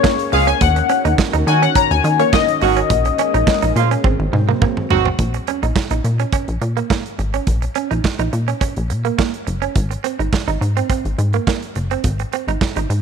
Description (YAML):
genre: early-eighties boogie funk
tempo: 105 BPM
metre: 4/4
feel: straight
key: unclear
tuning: A4 = 440 Hz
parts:
  - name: funky polysynth comp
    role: accompaniment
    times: 0.0-3.7 s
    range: Db5 to Bb5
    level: -17 LUFS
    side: left 14 dB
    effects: chorus
  - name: lush unison pad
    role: sustained chords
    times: 0.0-5.2 s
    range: Eb3 to Gb4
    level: -25 LUFS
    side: left 1 dB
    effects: chorus
  - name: direct-recorded clean electric guitar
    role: riff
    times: 0.0-12.9 s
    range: Bb3 to Eb4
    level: -23 LUFS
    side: right 13 dB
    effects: lush chorus
  - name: modern studio drum kit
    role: drums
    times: 0.0-13.0 s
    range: handclaps, hi-hat, kick drum, snare drum, toms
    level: -20 LUFS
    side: right 2 dB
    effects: none
  - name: warm horn section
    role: second line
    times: 0.3-5.1 s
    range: Db3 to Ab4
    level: -21 LUFS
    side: right 12 dB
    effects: none
  - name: plucky analog bass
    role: bass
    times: 0.3-13.0 s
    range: Gb1 to Eb3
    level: -18 LUFS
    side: left 1 dB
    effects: none
room: light reverb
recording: 1960s-style stereo with parts hard left and right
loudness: -15 LUFS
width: side -6 dB against mid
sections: 0.0-5.2 A section; 5.2-13.0 B section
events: analog polysynth solo 0.0-5.2; drum fill 4.0-5.2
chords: 0.0 Bbm7; 0.6 Ebm7; 2.9 Bbm7; 4.0 Ab7; 5.2 Bbm; 9.8 Ab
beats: 0.04 | 0.61 1.19 1.76 2.33 | 2.90 3.47 4.04 4.61 | 5.18 5.76 6.33 6.90 | 7.47 8.04 8.61 9.19 | 9.76 10.33 10.90 11.47 | 12.04 12.61